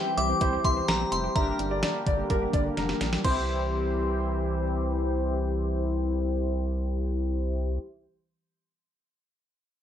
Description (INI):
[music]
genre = synth-pop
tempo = 127 BPM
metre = 4/4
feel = straight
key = C mixolydian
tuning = A4 = 440 Hz
[part]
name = glassy synth bell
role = melody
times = 0.0-8.0 s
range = G5 to D6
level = -31 LUFS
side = left 2 dB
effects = chorus, low-pass filter, tape echo
[part]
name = warm grand piano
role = second line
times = 0.0-4.6 s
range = Bb4 to E5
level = -34 LUFS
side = right 1 dB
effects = tape echo
[part]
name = analog synth brass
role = accompaniment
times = 0.0-7.8 s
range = D4 to C5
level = -32 LUFS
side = left 3 dB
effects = chorus, low-pass filter
[part]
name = warm analog pad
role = sustained chords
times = 0.0-7.8 s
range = D3 to G4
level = -34 LUFS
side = equal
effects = chorus, low-pass filter
[part]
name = analog pluck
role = arpeggios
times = 0.0-8.1 s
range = G3 to G4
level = -37 LUFS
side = right 1 dB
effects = chorus, phaser, low-pass filter, tape echo
[part]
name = rubbery square bass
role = bass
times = 0.2-7.8 s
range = F1 to C2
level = -30 LUFS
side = equal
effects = none
[part]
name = clean 12-bit digital drum machine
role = drums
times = 0.2-3.4 s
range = crash cymbal, hi-hat, kick drum, snare drum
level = -29 LUFS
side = equal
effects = none
[sound]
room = moderate studio reverb, RT60 0.6 s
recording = none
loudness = -25 LUFS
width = side -10 dB against mid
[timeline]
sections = 0.0-3.2 A section; 3.2-7.0 B section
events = filter sweep 0.0-3.2; drum fill 2.8-3.2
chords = 0.0 C; 1.4 Gm; 3.2 C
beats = 0.41 0.88 | 1.36 1.83 2.30 2.77 | 3.25 3.72 4.19 4.66 | 5.14 5.61 6.08 6.55